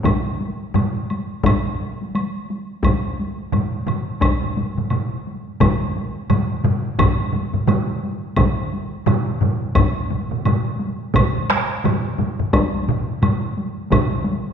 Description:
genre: japanese traditional, taiko drum ensemble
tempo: 87 BPM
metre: 4/4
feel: swing 60% on 16ths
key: none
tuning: none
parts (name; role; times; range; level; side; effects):
- taiko ensemble; percussion; 0.0-14.1 s; none; -23 LUFS; right 4 dB; none
- taiko ensemble; percussion; 0.0-14.1 s; none; -22 LUFS; left 1 dB; none
- taiko ensemble; percussion; 0.1-14.5 s; none; -25 LUFS; left 1 dB; none
- taiko ensemble; percussion; 0.1-14.1 s; none; -25 LUFS; left 4 dB; none
- woodblock; percussion; 0.1-14.1 s; none; -28 LUFS; right 1 dB; none
room: wet scoring stage reverb, RT60 1.8 s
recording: minimal, uncompressed stereo recording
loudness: -18 LUFS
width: side -7 dB against mid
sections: 0.0-5.6 A section; 5.6-14.5 B section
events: none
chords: none

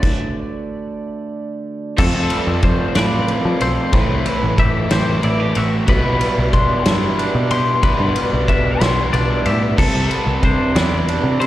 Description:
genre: math rock and midwest emo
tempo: 62 BPM (dotted quarters)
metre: 6/8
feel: straight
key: unclear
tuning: A4 = 440 Hz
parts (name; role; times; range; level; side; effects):
- twangy electric guitar; accompaniment; 0.0-11.5 s; D2 to B4; -24 LUFS; right 4 dB; spring reverb
- twelve-string electric guitar; arpeggios; 0.0-11.5 s; A4 to C6; -23 LUFS; left 4 dB; spring reverb, digital delay
- loose indie drum kit; drums; 0.0-11.5 s; crash cymbal, kick drum, ride cymbal, snare drum; -20 LUFS; equal; none
- overdriven electric guitar; riff; 2.0-11.5 s; A2 to F4; -22 LUFS; equal; slapback echo
- picked electric bass; bass; 2.0-11.5 s; A1 to F3; -19 LUFS; equal; none
room: small room ambience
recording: live gig heard through the venue's PA, recital hall reverb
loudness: -14 LUFS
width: side -14 dB against mid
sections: 0.0-2.0 A section; 2.0-11.5 B section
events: stop 0.0-2.0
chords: 0.0 N.C.; 2.0 Fadd9; 3.9 Am9; 5.9 Em7/B; 9.8 Cmaj9

